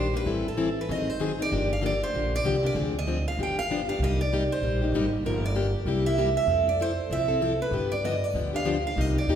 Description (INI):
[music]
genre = acoustic string swing (jazz manouche)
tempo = 193 BPM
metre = 4/4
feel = swing 59% on 8ths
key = G minor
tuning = A4 = 440 Hz
[part]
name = picked steel-string acoustic guitar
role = melody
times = 0.0-9.4 s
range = A4 to G5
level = -28 LUFS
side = right 3 dB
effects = none
[part]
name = picked plugged-in steel-string acoustic guitar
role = accompaniment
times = 0.0-9.4 s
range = C3 to A4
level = -28 LUFS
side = left 3 dB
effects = none
[part]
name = upright bass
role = bass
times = 0.0-9.4 s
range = G1 to G2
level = -29 LUFS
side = equal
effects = none
[sound]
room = wet recital hall reverb, RT60 1.6 s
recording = recorded in a church or concert hall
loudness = -24 LUFS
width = side -9 dB against mid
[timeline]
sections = 0.0-4.0 A section; 4.0-9.4 B section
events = none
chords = 0.3 Am7; 0.9 Ab7; 1.5 Gm7; 2.8 Dm7b5; 3.4 G7; 4.0 Cm7; 5.2 Gm7; 5.9 C7; 6.5 Fmaj7; 7.7 G7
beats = | 0.27 0.58 0.89 1.20 | 1.51 1.82 2.14 2.45 | 2.76 3.07 3.38 3.69 | 4.00 4.31 4.62 4.93 | 5.24 5.55 5.86 6.17 | 6.49 6.80 7.11 7.42 | 7.73 8.04 8.35 8.66 | 8.97 9.28